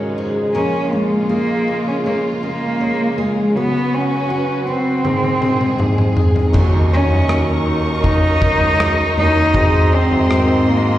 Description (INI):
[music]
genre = pop ballad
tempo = 80 BPM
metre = 4/4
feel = straight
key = unclear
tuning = A4 = 440 Hz
[part]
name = tine electric piano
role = accompaniment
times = 0.0-11.0 s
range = Ab2 to C5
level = -22 LUFS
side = right 1 dB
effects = medium tremolo
[part]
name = warm studio string section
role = sustained chords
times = 0.0-11.0 s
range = Db3 to Db6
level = -25 LUFS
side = equal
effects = none
[part]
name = picked steel-string acoustic guitar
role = arpeggios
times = 0.0-11.0 s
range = Ab2 to Cb5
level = -25 LUFS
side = left 2 dB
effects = none
[part]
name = dark cello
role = melody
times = 0.5-11.0 s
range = Ab3 to Eb4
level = -18 LUFS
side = equal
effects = digital delay
[part]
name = modern studio drum kit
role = drums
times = 5.0-10.5 s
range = crash cymbal, kick drum, rim click, toms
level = -17 LUFS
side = equal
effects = none
[part]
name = warm chamber cello section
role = bass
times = 6.5-11.0 s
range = Db2 to Ab2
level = -21 LUFS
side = equal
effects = none
[sound]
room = light reverb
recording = live gig heard through the venue's PA, recital hall reverb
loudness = -14 LUFS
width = side -13 dB against mid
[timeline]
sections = 0.0-6.5 A section; 6.5-11.0 B section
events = drum fill 5.0-6.5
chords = 0.0 Ab7sus4; 0.5 Bbm7; 3.5 Cbsus2; 5.0 Ab; 6.5 Ebm7; 9.5 Ab7